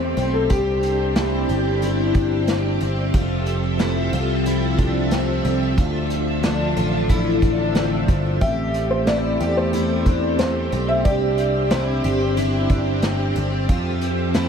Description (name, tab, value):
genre	dream pop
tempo	91 BPM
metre	4/4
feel	straight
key	unclear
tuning	A4 = 443 Hz
part	felt-muted upright piano	melody	0.0-1.8, 8.4-12.3 s	G4 to E5	-26 LUFS	left 1 dB	tape echo
part	string machine, violins	sustained chords	0.0-14.5 s	D3 to E5	-24 LUFS	equal	ensemble chorus
part	picked twelve-string acoustic guitar	arpeggios	0.0-14.5 s	C4 to G4	-25 LUFS	left 3 dB	lush chorus, tape echo
part	picked electric bass	bass	0.0-14.5 s	F1 to F2	-24 LUFS	right 1 dB	none
part	vintage drum kit	drums	0.2-14.5 s	hi-hat, kick drum, snare drum	-24 LUFS	equal	none
room	moderate shimmer reverb, RT60 5.8 s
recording	none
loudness	-18 LUFS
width	side -7 dB against mid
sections	0.0-14.5 A section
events	none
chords	0.0 Am7; 0.5 Csus2; 3.1 Fmaj7; 5.8 Dmadd9; 8.4 Am7; 11.1 Csus2; 13.7 Fmaj7